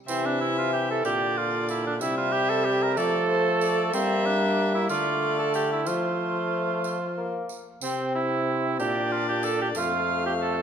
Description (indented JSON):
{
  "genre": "classical, renaissance-style consort dance",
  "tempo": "62 BPM (dotted quarters)",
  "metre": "6/8",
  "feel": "straight",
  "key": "C mixolydian",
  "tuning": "A4 = 440 Hz",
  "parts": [
    { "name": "warm violin", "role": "melody", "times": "0.1-10.6 s", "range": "C5 to F5", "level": "-32 LUFS", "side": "left 6 dB", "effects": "none" },
    { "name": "warm cor anglais", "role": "second line", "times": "0.1-10.6 s", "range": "C4 to Bb4", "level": "-26 LUFS", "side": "right 4 dB", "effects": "none" },
    { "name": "warm bassoon", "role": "accompaniment", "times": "0.1-10.6 s", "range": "D3 to D4", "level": "-30 LUFS", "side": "left 2 dB", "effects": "none" },
    { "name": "warm trombone", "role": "bass", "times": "0.1-10.6 s", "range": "F2 to G3", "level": "-30 LUFS", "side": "equal", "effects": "none" },
    { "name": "tambourine", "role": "percussion", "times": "0.1-10.0 s", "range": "none", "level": "-41 LUFS", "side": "right 6 dB", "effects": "none" }
  ],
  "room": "wet recital hall reverb, RT60 1.8 s",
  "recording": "dark, warm production",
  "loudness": "-23 LUFS",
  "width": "side -8 dB against mid",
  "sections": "0.1-10.6 A section",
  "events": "none",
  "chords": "0.1 C; 1.1 Bb; 2.0 C; 3.0 F; 3.9 Gm; 4.9 Dm; 5.9 F; 7.8 C; 8.8 Bb; 9.8 F"
}